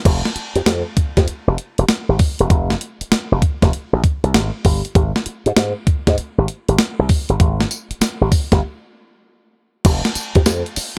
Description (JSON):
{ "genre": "R&B, new jack swing", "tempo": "98 BPM", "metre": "4/4", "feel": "swing 66% on 16ths", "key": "F minor", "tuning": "A4 = 439 Hz", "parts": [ { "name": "slap bass with an envelope filter", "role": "bass", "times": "0.1-10.8 s", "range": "E1 to Ab2", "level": "-19 LUFS", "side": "equal", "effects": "none" }, { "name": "clean 12-bit digital drum machine", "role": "drums", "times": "0.1-11.0 s", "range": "crash cymbal, hi-hat, kick drum, snare drum, tambourine", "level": "-19 LUFS", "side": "equal", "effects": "none" } ], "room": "little or no reverb", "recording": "none", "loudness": "-18 LUFS", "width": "mono", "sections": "0.1-9.8 A section; 9.8-11.0 B section", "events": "break 8.6-9.8", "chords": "none" }